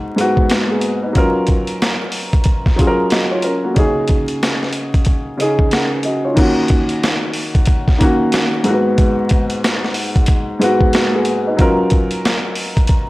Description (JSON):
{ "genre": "hip hop, boom-bap hip-hop", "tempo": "92 BPM", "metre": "4/4", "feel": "swing 61% on 16ths", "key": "Eb minor", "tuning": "A4 = 441 Hz", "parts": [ { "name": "dark baby grand piano", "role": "accompaniment", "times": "0.0-13.1 s", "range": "Ab2 to Gb5", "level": "-16 LUFS", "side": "equal", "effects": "cassette tape, high-pass filter, low-pass filter" }, { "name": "boom bap sampler-style drum kit", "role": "drums", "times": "0.2-13.1 s", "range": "crash cymbal, hi-hat, kick drum, snare drum", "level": "-16 LUFS", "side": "equal", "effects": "none" } ], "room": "light reverb", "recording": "dry, gritty hardware recording, vinyl crackle", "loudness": "-13 LUFS", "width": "side -19 dB against mid", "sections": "0.0-6.4 A section; 6.4-13.1 B section", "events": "none", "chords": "0.0 Abm7; 1.2 Gbmaj7; 3.8 Dbsus2; 6.4 Ebm7; 8.7 Abm7; 11.6 Gbmaj7" }